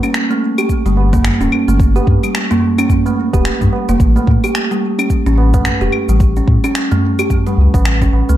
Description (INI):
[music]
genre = organic downtempo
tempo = 109 BPM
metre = 4/4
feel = swing 59% on 16ths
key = unclear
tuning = A4 = 438 Hz
[part]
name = kalimba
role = arpeggios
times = 0.0-8.4 s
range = G3 to G4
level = -16 LUFS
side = right 1 dB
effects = digital delay
[part]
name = electronic claves, cabasa and finger snaps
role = drums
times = 0.0-8.4 s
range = none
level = -22 LUFS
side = left 2 dB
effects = none
[part]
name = tabla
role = percussion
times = 0.3-8.4 s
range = none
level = -21 LUFS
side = right 1 dB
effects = none
[part]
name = electronic kick drum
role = drums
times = 0.7-8.1 s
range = none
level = -15 LUFS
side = equal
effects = none
[part]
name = warm sub bass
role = bass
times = 0.9-8.4 s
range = D1 to A2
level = -14 LUFS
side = equal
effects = tube saturation
[sound]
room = light reverb, small room ambience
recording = dark, warm production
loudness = -11 LUFS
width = side -13 dB against mid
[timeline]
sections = 0.0-8.4 A section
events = none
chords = 0.0 N.C.; 4.0 A7